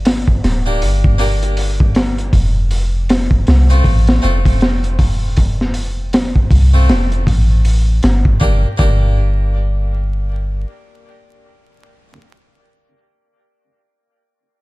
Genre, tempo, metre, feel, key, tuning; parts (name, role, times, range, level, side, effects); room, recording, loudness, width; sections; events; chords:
trip hop; 79 BPM; 4/4; swing 59% on 16ths; G minor; A4 = 439 Hz
harpsichord; accompaniment; 0.0-12.1 s; A3 to Bb4; -24 LUFS; left 1 dB; tremolo, tape echo
soft 808-style bass; bass; 0.0-10.7 s; D1 to C2; -14 LUFS; equal
crunchy breakbeat drum kit; drums; 0.1-9.0 s; hi-hat, kick drum, snare drum; -15 LUFS; equal
small room ambience; dark, warm production, vinyl crackle; -12 LUFS; side -21 dB against mid
0.0-8.4 A section; 8.4-11.4 B section
0.0 Gm; 2.3 F; 8.4 Gm